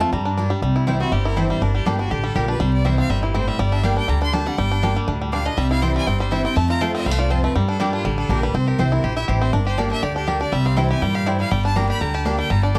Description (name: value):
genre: bluegrass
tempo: 242 BPM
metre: 4/4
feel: swing 53% on 8ths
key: G dorian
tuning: A4 = 435 Hz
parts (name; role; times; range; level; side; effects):
- bluegrass banjo; melody; 0.0-12.8 s; G3 to G4; -28 LUFS; equal; none
- picked steel-string acoustic guitar; accompaniment; 0.0-12.8 s; E2 to G4; -27 LUFS; equal; none
- mandolin; stabs; 0.0-12.8 s; Bb3 to Bb5; -32 LUFS; equal; tape echo
- upright bass; bass; 0.0-12.8 s; G1 to G2; -24 LUFS; equal; none
- clear fiddle; second line; 1.0-12.8 s; F4 to C6; -30 LUFS; equal; tape echo
room: light reverb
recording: none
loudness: -20 LUFS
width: mono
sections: 0.6-8.5 A section; 8.5-12.8 A section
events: fiddle solo 0.6-12.8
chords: 0.1 Gm; 0.6 C; 1.6 Gm; 2.6 C; 3.6 Gm; 5.6 C; 6.6 F; 7.6 Gm; 8.5 C; 9.5 Gm; 10.5 C; 11.5 Gm